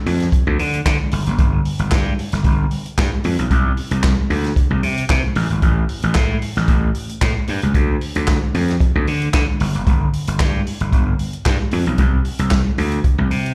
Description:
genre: disco.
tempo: 113 BPM.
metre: 4/4.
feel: straight.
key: unclear.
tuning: A4 = 440 Hz.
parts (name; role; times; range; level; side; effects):
gritty slap bass; bass; 0.1-13.5 s; F#1 to D3; -20 LUFS; equal; overdrive.
vintage drum kit; drums; 0.1-13.5 s; handclaps, hi-hat, kick drum, snare drum; -21 LUFS; equal; none.
room: little or no reverb.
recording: live gig heard through the venue's PA, club reverb.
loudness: -18 LUFS.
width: mono.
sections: 0.0-13.5 A section.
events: none.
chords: none.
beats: 0.32 0.85 | 1.38 1.91 2.44 2.98 | 3.51 4.04 4.57 5.10 | 5.63 6.16 6.69 7.22 | 7.75 8.28 8.81 9.34 | 9.87 10.40 10.93 11.46 | 11.98 12.52 13.04.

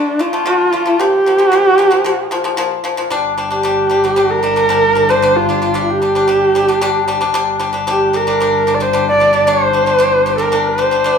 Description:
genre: mongolian traditional, Mongolian folk.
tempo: 113 BPM.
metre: 4/4.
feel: straight.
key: G yu mode.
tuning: A4 = 440 Hz.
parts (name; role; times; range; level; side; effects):
warm horsehead fiddle; melody; 0.0-11.2 s; D4 to D5; -12 LUFS; right 1 dB; none.
pipa; arpeggios; 0.0-11.2 s; Bb2 to D4; -17 LUFS; left 4 dB; none.
warm double bass; drone; 3.1-11.2 s; G1; -24 LUFS; right 1 dB; none.
room: wet large studio reverb, RT60 0.9 s.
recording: band playing live in one room.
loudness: -11 LUFS.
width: side -6 dB against mid.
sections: 0.0-3.1 A section; 3.1-11.2 B section.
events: none.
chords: 0.0 D5; 1.0 Bb5; 3.1 G5.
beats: 0.47 | 0.99 1.52 2.05 2.58 | 3.11 3.64 4.17 4.70 | 5.23 5.76 6.29 6.82 | 7.35 7.88 8.41 8.94 | 9.47 9.99 10.52 11.05.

